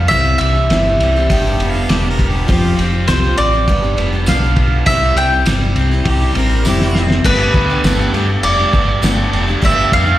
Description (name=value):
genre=folk rock and heartland rock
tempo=101 BPM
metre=4/4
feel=straight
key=G mixolydian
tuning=A4 = 439 Hz
part: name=mandolin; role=melody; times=0.0-10.2 s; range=B4 to G5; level=-17 LUFS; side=right 1 dB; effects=slapback echo
part: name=picked steel-string acoustic guitar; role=accompaniment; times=0.0-10.2 s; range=G2 to G4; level=-23 LUFS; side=left 4 dB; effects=slapback echo
part: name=hand-pumped harmonium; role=sustained chords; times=0.0-10.2 s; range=B3 to A4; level=-29 LUFS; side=right 2 dB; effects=none
part: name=crunchy overdriven guitar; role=riff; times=0.0-10.2 s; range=G2 to G4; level=-21 LUFS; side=equal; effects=slapback echo
part: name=deep dub fingered electric bass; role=bass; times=0.0-10.1 s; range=E1 to G2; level=-16 LUFS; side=equal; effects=none
part: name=cloth-damped thuddy drum kit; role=drums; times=0.1-10.1 s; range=crash cymbal, kick drum, ride cymbal, snare drum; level=-18 LUFS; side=equal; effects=none
part: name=warm harmonica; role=second line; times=1.3-7.1 s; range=G4 to G5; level=-25 LUFS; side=right 1 dB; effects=slapback echo
part: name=clear upright piano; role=accompaniment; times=2.5-10.2 s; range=D4 to C5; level=-35 LUFS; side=right 1 dB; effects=none
part: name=tambourine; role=percussion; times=3.1-9.2 s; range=none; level=-30 LUFS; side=right 3 dB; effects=none
room=light reverb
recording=live gig heard through the venue's PA, recital hall reverb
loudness=-12 LUFS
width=side -14 dB against mid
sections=0.0-7.2 A section; 7.2-10.2 B section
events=drum fill 6.7-7.2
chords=0.1 C; 1.3 G; 2.5 Fsus2; 3.7 G; 4.9 C; 7.2 Gadd9